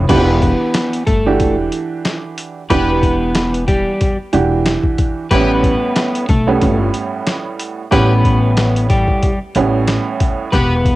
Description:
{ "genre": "hip hop, boom-bap hip-hop", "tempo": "92 BPM", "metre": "4/4", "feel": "swing 57% on 16ths", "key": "E dorian", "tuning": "A4 = 439 Hz", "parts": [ { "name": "warm upright piano", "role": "accompaniment", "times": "0.0-10.5 s", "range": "A2 to F#5", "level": "-18 LUFS", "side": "right 4 dB", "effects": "cassette tape, high-pass filter, low-pass filter" }, { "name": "upright bass", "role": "bass", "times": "0.0-10.9 s", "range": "E1 to B1", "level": "-17 LUFS", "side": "left 1 dB", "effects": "none" }, { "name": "electric guitar at the edge of break-up", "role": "melody", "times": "0.1-11.0 s", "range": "G3 to B4", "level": "-18 LUFS", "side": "left 1 dB", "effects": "high-pass filter, low-pass filter, cassette tape, tape echo" }, { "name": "clear horn section", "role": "stabs", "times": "0.1-10.7 s", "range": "B3 to B4", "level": "-23 LUFS", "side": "left 2 dB", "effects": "high-pass filter, low-pass filter, tape echo" }, { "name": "boom bap sampler-style drum kit", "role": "drums", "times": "0.1-11.0 s", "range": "crash cymbal, hi-hat, kick drum, snare drum", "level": "-18 LUFS", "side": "left 1 dB", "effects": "cassette tape" } ], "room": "small room ambience", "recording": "home recording on cassette", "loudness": "-13 LUFS", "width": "side -17 dB against mid", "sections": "0.1-11.0 A section", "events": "none", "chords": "0.1 Em9; 5.3 A9", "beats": "| 0.09 0.74 1.40 2.05 | 2.70 3.35 4.00 4.66 | 5.31 5.96 6.61 7.27 | 7.92 8.57 9.22 9.88 | 10.53" }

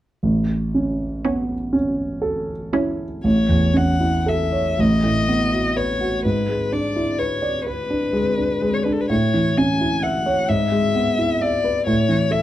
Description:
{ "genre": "classical, slow romantic movement for piano quartet", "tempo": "38-44 BPM (dotted quarters)", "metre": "6/8", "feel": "rubato", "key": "A major", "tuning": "A4 = 440 Hz", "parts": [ { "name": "dark grand piano", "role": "accompaniment", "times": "0.2-12.4 s", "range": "A1 to E5", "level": "-19 LUFS", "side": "right 1 dB", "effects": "none" }, { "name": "rich viola", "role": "accompaniment", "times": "1.3-3.1 s", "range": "C#4", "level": "-23 LUFS", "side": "right 3 dB", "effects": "none" }, { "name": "rich violin", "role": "melody", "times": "3.3-12.4 s", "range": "A4 to G#5", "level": "-23 LUFS", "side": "left 4 dB", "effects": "none" } ], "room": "light reverb", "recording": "dark, warm production", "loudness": "-18 LUFS", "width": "side -13 dB against mid", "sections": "0.2-3.2 A section; 3.2-12.4 B section", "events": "none", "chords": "0.2 A; 4.8 B7/A; 6.2 E7/G#; 9.1 A; 10.5 E/G#; 11.9 A", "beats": "| 0.24 1.74 | 3.25 4.78 | 6.24 7.65 | 9.10 10.49 | 11.87" }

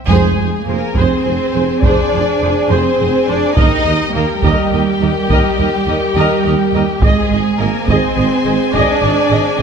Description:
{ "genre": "cinematic, epic orchestral film score", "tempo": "70 BPM (dotted quarters)", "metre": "12/8", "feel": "straight", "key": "F dorian", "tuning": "A4 = 439 Hz", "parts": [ { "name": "warm studio violin section", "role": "melody", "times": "0.1-9.6 s", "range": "G5 to Ab5", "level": "-26 LUFS", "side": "left 7 dB", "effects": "none" }, { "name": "warm symphonic violin section", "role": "second line", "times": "0.1-9.6 s", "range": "G4 to Eb5", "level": "-21 LUFS", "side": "left 1 dB", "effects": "none" }, { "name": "warm symphonic viola section", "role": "accompaniment", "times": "0.1-9.6 s", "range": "Ab4 to Eb5", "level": "-20 LUFS", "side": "equal", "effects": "none" }, { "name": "dark French horn section", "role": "sustained chords", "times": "0.1-9.6 s", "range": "G4 to C5", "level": "-21 LUFS", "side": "left 6 dB", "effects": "none" }, { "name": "dark symphonic cello section", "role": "bass", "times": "0.1-9.6 s", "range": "G3 to Eb4", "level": "-18 LUFS", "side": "right 5 dB", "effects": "none" }, { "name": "dark symphonic double bass section", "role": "bass", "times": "0.1-9.6 s", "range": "Ab1 to F2", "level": "-20 LUFS", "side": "right 4 dB", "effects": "none" }, { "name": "mellow tuba", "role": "bass", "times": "0.1-9.6 s", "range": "F1 to Eb2", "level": "-22 LUFS", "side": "right 4 dB", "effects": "none" }, { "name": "taiko ensemble", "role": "drums", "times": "0.1-9.3 s", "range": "none", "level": "-17 LUFS", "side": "right 1 dB", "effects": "none" } ], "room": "moderate scoring stage reverb, RT60 2.1 s", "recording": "none", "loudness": "-12 LUFS", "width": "side -6 dB against mid", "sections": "0.1-9.6 A section", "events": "band accent 0.1-0.7", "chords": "0.1 Fm; 3.6 Eb; 7.0 Ab", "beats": "| 0.08 0.95 1.83 2.70 | 3.56 4.43 5.29 6.15 | 7.01 7.88 8.73 9.60" }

